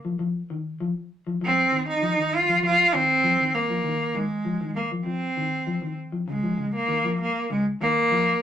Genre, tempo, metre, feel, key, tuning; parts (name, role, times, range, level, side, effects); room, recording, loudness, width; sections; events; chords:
afrobeat; 99 BPM; 4/4; straight; Bb minor; A4 = 441 Hz
electric guitar at the edge of break-up; arpeggios; 0.0-8.3 s; Db3 to F3; -29 LUFS; left 3 dB
clear cello; melody; 1.4-8.4 s; Ab3 to F4; -22 LUFS; right 1 dB
wet small room ambience, RT60 0.5 s; rough rehearsal-room recording; -22 LUFS; side -10 dB against mid
0.0-6.3 A section; 6.3-8.4 A section
0.0 N.C.; 6.3 Bbm7